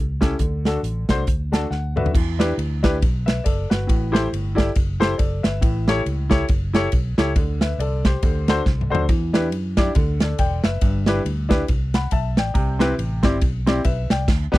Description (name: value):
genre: uptempo gospel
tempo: 138 BPM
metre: 4/4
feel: swing 60% on 8ths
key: G major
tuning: A4 = 440 Hz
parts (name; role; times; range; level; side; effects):
- fingered electric bass; bass; 0.0-14.6 s; E1 to F#2; -24 LUFS; equal; none
- clear concert grand piano; accompaniment; 0.2-14.6 s; G2 to B5; -24 LUFS; left 2 dB; none
- natural country drum kit; drums; 0.2-14.6 s; crash cymbal, hi-hat, kick drum, ride cymbal, snare drum, toms; -20 LUFS; equal; none
room: little or no reverb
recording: dry, close 1970s-style studio recording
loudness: -18 LUFS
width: side -17 dB against mid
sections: 0.0-2.1 A section; 2.1-14.6 B section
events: grand piano fill 1.3-2.1; drum fill 1.7-2.1, 8.7-9.1; band accent 14.3-14.6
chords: 0.4 D; 2.1 Em7; 3.9 Am7; 5.6 A7; 7.4 Cmaj13; 8.2 D7; 9.1 Em7; 10.0 Dsus2; 10.8 G6